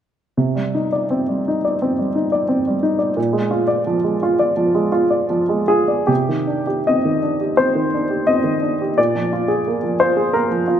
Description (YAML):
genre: neoclassical minimalist piano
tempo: 84 BPM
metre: 4/4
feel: uneven beats, rubato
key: C minor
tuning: A4 = 440 Hz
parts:
  - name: warm upright piano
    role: solo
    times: 0.4-10.8 s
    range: Bb2 to Eb5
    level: -16 LUFS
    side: equal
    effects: none
room: light reverb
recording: none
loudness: -16 LUFS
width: side -9 dB against mid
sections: 0.4-6.1 A section; 6.1-10.8 B section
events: none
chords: 0.4 Cmadd9; 3.2 Bb7; 6.1 Cmadd9; 9.0 Bb7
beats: | 0.39 1.12 1.81 2.49 | 3.17 3.86 4.57 5.31 | 6.09 6.87 7.58 8.28 | 8.97 9.67 10.36